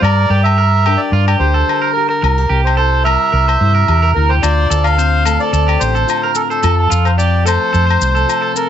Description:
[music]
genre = highlife guitar band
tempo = 109 BPM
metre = 4/4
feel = straight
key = D minor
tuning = A4 = 440 Hz
[part]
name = melodica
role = melody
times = 0.0-8.7 s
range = A4 to F5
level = -17 LUFS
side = equal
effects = none
[part]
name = nylon-string guitar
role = accompaniment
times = 0.0-8.7 s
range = A2 to C5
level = -23 LUFS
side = left 13 dB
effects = none
[part]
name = electric guitar at the edge of break-up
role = arpeggios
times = 0.0-8.7 s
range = F4 to C5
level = -18 LUFS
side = right 8 dB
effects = tape echo
[part]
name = hollow-body short-scale fingered electric bass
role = bass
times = 0.0-8.2 s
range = A1 to G2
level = -14 LUFS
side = equal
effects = none
[part]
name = agogo bells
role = percussion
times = 0.0-8.4 s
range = none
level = -23 LUFS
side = left 12 dB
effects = none
[part]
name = maracas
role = percussion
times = 4.4-8.7 s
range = none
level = -25 LUFS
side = left 10 dB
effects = none
[sound]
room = light reverb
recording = nothing above 7.9 kHz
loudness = -11 LUFS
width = side -9 dB against mid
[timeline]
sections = 0.0-8.7 A section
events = none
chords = 0.0 Gm; 2.2 C7; 4.4 Dm7; 6.6 F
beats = | 0.02 0.57 1.12 1.67 | 2.23 2.78 3.33 3.88 | 4.43 4.98 5.53 6.08 | 6.63 7.18 7.74 8.29

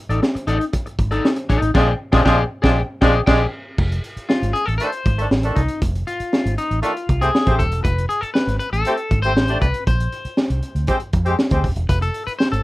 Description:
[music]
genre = funk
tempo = 118 BPM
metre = 4/4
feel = straight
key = F mixolydian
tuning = A4 = 440 Hz
[part]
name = electric guitar at the edge of break-up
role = accompaniment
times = 0.1-12.6 s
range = Eb4 to G5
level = -23 LUFS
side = left 3 dB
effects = warbly pitch drift
[part]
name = vintage muted fingered electric bass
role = bass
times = 0.1-12.6 s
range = Eb1 to F2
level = -20 LUFS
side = equal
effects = none
[part]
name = crunchy breakbeat drum kit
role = drums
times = 0.1-12.6 s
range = crash cymbal, hi-hat, kick drum, snare drum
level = -20 LUFS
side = equal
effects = none
[part]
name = dark horn section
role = second line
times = 1.7-11.7 s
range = Eb3 to D5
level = -20 LUFS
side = equal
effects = none
[sound]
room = little or no reverb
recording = rough home demo mix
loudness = -17 LUFS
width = side -18 dB against mid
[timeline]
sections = 0.0-3.8 A section; 3.8-12.6 B section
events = band accent 1.8-3.8; clean electric guitar solo 3.8-12.6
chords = 0.0 F6 (rootless); 1.8 Bb6; 3.8 F7; 9.9 N.C.; 11.9 F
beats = 0.23 0.74 1.24 | 1.75 2.26 2.77 3.28 | 3.79 4.29 4.80 5.31 | 5.82 6.33 6.83 7.34 | 7.85 8.35 8.86 9.37 | 9.87 10.38 10.88 11.39 | 11.90 12.40

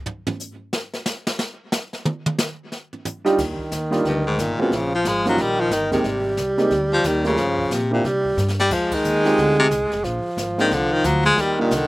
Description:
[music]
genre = jazz, small-group swing and bop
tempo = 180 BPM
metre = 4/4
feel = swing 62% on 8ths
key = Eb major from 3.4 s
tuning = A4 = 440 Hz
[part]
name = jazz brush drum kit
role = drums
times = 0.1-11.9 s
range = brushed snare drum, crash cymbal, hi-hat, kick drum, ride cymbal, snare drum, toms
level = -27 LUFS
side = equal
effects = none
[part]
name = warm baby grand piano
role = accompaniment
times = 3.2-11.7 s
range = G3 to Bb4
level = -22 LUFS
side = right 2 dB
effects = slapback echo
[part]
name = breathy tenor saxophone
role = second line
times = 3.4-11.9 s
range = Eb3 to Ab3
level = -23 LUFS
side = right 1 dB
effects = slapback echo
[part]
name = upright bass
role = bass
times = 3.4-11.9 s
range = F1 to C3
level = -26 LUFS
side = equal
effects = none
[part]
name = bright baritone saxophone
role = melody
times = 4.1-11.9 s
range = G2 to Ab3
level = -21 LUFS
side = left 2 dB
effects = slapback echo
[sound]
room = little or no reverb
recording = recorded outdoors, with no room sound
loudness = -18 LUFS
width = side -19 dB against mid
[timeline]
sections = 0.0-3.4 A section; 3.4-11.9 B section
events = drum solo 0.0-3.4; drum fill 8.4-8.7; band accent 8.9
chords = 0.0 N.C.; 2.7 Ebadd9; 3.4 Ebmaj7; 4.7 Bbm7; 5.4 Eb; 6.0 Abmaj7; 7.4 Gm7b5; 8.0 C5; 8.7 Fm7; 10.0 Bb7; 11.4 Ebmaj7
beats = 0.06 0.39 | 0.72 1.06 1.39 1.72 | 2.05 2.38 2.71 3.05 | 3.38 3.71 4.04 4.38 | 4.71 5.04 5.38 5.71 | 6.04 6.38 6.71 7.04 | 7.37 7.71 8.04 8.37 | 8.71 9.04 9.37 9.71 | 10.04 10.37 10.71 11.04 | 11.37 11.71

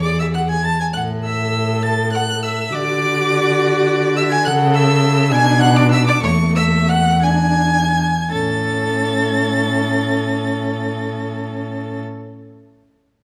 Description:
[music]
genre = quick classical-period movement for string quartet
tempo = 54-70 BPM (dotted quarters)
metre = 6/8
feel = rubato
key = A major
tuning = A4 = 443 Hz
[part]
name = warm violin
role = melody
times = 0.0-12.0 s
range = C#6 to A6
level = -25 LUFS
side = equal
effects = none
[part]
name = rich violin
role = second line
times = 0.0-12.0 s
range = A4 to A5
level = -24 LUFS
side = equal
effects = none
[part]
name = dark viola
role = accompaniment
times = 0.0-12.0 s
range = A3 to A4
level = -24 LUFS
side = equal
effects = none
[part]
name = rich cello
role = bass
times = 0.0-12.0 s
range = E2 to D3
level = -21 LUFS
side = equal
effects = none
[sound]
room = wet recital hall reverb, RT60 1.6 s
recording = none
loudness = -17 LUFS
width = mono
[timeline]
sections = 0.0-8.3 A section; 8.3-12.6 B section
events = slowing down 3.6-8.3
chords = 0.0 E; 1.0 A5; 2.7 D; 4.5 A/C#; 5.3 Bm; 6.2 A5/E; 7.2 E7; 8.3 A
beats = 0.04 | 0.95 1.85 | 2.73 3.60 | 4.46 5.32 | 6.24 7.24 | 8.32 9.41 | 10.48 11.55

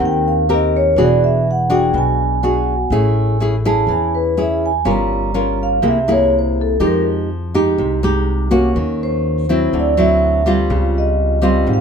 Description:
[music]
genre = bossa nova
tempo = 123 BPM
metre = 4/4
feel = straight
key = unclear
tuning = A4 = 440 Hz
[part]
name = nylon-string guitar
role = accompaniment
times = 0.0-11.8 s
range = Ab2 to Bb4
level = -17 LUFS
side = left 1 dB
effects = none
[part]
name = upright bass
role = bass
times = 0.0-11.8 s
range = E1 to F2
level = -19 LUFS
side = equal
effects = none
[part]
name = vibraphone with medium mallets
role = melody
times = 0.1-11.8 s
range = A4 to Bb5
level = -18 LUFS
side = right 2 dB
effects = none
[sound]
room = light reverb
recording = minimal, uncompressed stereo recording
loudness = -14 LUFS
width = side -6 dB against mid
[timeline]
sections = 0.0-11.8 A section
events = vibraphone solo 0.0-11.8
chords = 0.0 Abmaj9 (rootless); 1.0 E9; 2.9 Amaj7; 4.9 Gm7b5; 5.8 Caug7; 6.8 Fm9; 8.8 Ebm7; 9.7 D9; 10.7 Dbmaj9#11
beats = 0.00 0.48 | 0.97 1.46 1.94 2.43 | 2.92 3.40 3.89 4.38 | 4.86 5.35 5.83 6.32 | 6.81 7.29 7.78 8.27 | 8.75 9.24 9.72 10.21 | 10.70 11.18 11.67

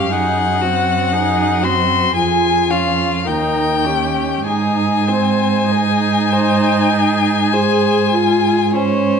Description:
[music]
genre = classical, slow romantic movement for string quartet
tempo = 48-60 BPM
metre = 4/4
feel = rubato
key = Ab major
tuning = A4 = 440 Hz
[part]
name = rich violin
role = melody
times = 0.0-9.2 s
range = Db5 to C6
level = -18 LUFS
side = left 7 dB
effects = none
[part]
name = rich violin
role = second line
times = 0.0-9.2 s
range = F4 to C5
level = -22 LUFS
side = left 2 dB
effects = none
[part]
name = warm viola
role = accompaniment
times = 0.0-9.2 s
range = C4 to Ab4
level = -20 LUFS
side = right 2 dB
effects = none
[part]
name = warm cello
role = bass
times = 0.0-9.1 s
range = Eb2 to Ab2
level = -19 LUFS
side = right 5 dB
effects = none
[sound]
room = moderate recital hall reverb, RT60 1.4 s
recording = nothing above 10.7 kHz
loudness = -13 LUFS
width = side -6 dB against mid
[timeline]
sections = 0.0-9.2 A section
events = none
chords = 0.1 Ab7/Gb; 2.2 Db/F; 3.3 Eb7; 4.5 Ab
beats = | 0.12 1.13 2.16 3.27 | 4.47 5.71 6.93 8.14

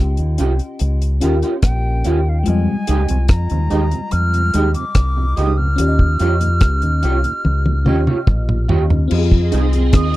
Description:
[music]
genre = lovers rock reggae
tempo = 72 BPM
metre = 4/4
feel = straight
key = F minor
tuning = A4 = 436 Hz
[part]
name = FM electric piano with soft pad layer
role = accompaniment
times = 0.0-10.2 s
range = G3 to Eb5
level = -24 LUFS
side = left 4 dB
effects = chorus, tremolo
[part]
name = deep dub fingered electric bass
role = bass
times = 0.0-10.1 s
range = Bb1 to F2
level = -16 LUFS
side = equal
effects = none
[part]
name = deep reggae drum kit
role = drums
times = 0.2-10.2 s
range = crash cymbal, hi-hat, kick drum, rim click, toms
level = -16 LUFS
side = equal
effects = none
[part]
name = electric guitar through a small old amp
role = stabs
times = 0.4-9.6 s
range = Ab3 to Db5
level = -20 LUFS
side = right 4 dB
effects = ensemble chorus
[part]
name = reedy silver concert flute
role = melody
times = 1.6-10.2 s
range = F5 to F6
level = -24 LUFS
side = equal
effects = tape echo
[part]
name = tonewheel organ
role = accompaniment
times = 2.7-9.8 s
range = Eb2 to G4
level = -28 LUFS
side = right 5 dB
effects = overdrive, chorus vibrato, slow rotary speaker, tube saturation
[part]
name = phased string machine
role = second line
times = 9.1-10.2 s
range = C4 to Eb5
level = -24 LUFS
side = right 6 dB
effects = ensemble chorus, phaser
[sound]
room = little or no reverb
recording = dry, close 1970s-style studio recording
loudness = -14 LUFS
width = side -16 dB against mid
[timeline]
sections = 0.0-9.1 A section; 9.1-10.2 B section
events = drum fill 7.4-9.1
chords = 0.0 Eb9; 2.5 Fm9; 5.8 Eb9; 9.1 Fm7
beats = 0.80 1.63 | 2.46 3.29 4.12 4.95 | 5.78 6.62 7.45 8.28 | 9.11 9.93

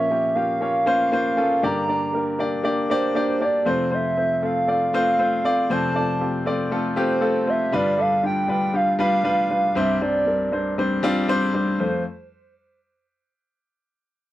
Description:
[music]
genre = pop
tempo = 118 BPM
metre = 4/4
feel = straight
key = F major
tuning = A4 = 440 Hz
[part]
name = hollow clarinet-like synth lead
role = melody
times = 0.0-12.0 s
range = C5 to Bb5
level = -22 LUFS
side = right 1 dB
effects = chorus
[part]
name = clear baby grand piano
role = accompaniment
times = 0.0-12.0 s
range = C2 to D5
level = -22 LUFS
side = left 1 dB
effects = none
[sound]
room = light reverb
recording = dry, close 1970s-style studio recording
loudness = -19 LUFS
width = side -15 dB against mid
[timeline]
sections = 0.0-11.8 A section; 11.8-13.8 B section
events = none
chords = 0.0 Bbm; 1.6 Gm; 3.7 F; 7.7 G7; 9.8 Csus2; 11.8 F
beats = 0.11 0.61 1.12 | 1.63 2.14 2.65 3.16 | 3.66 4.17 4.68 5.19 | 5.70 6.20 6.71 7.22 | 7.73 8.24 8.74 9.25 | 9.76 10.27 10.78 11.28 | 11.79

